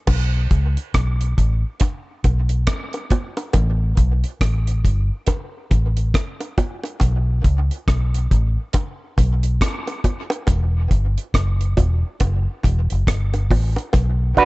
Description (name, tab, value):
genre	dub reggae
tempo	69 BPM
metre	4/4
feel	swing 60% on 16ths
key	unclear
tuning	A4 = 440 Hz
part	vintage muted fingered electric bass	bass	0.1-14.4 s	E1 to C#2	-18 LUFS	equal	none
part	deep reggae drum kit	drums	0.1-14.4 s	crash cymbal, hi-hat, kick drum, rim click	-20 LUFS	equal	none
part	bongos	percussion	0.1-14.2 s	none	-28 LUFS	right 2 dB	dub echo
part	electric guitar with an envelope filter	accompaniment	14.4 s	D4 to B4	-10 LUFS	right 4 dB	none
room	small room ambience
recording	nothing above 8.0 kHz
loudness	-18 LUFS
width	side -21 dB against mid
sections	0.1-14.4 A section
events	break 0.1-13.9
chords	0.1 N.C.; 10.5 Em; 13.9 Bm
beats	| 0.08 0.95 1.81 2.68 | 3.55 4.41 5.28 6.15 | 7.01 7.88 8.74 9.61 | 10.48 11.34 12.21 13.08 | 13.94